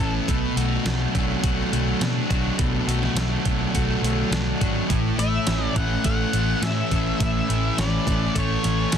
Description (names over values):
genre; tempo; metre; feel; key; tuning
rock, shoegaze and dream pop; 104 BPM; 4/4; straight; A major; A4 = 440 Hz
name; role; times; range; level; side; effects
octave-fuzz lead guitar; melody; 0.0-0.1, 5.2-9.0 s; A4 to F#5; -29 LUFS; left 2 dB; distortion, digital delay
twelve-string electric guitar; arpeggios; 0.0-9.0 s; E3 to A4; -33 LUFS; left 13 dB; wide subtle chorus, digital delay
overdriven electric guitar; riff; 0.0-9.0 s; A2 to F#4; -27 LUFS; right 14 dB; reverse reverb
thick fuzz guitar; riff; 0.0-9.0 s; A2 to F#4; -27 LUFS; left 11 dB; distortion, wide subtle chorus
vintage muted fingered electric bass; bass; 0.0-9.0 s; G#1 to B2; -25 LUFS; equal; none
detuned 8-bit digital drum machine; drums; 0.3-9.0 s; hi-hat, kick drum, snare drum; -27 LUFS; equal; none
room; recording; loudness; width
digital ambience; dense, heavily limited modern master; -20 LUFS; side -8 dB against mid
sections
0.0-9.0 A section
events
none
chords
0.3 Bm7; 4.9 A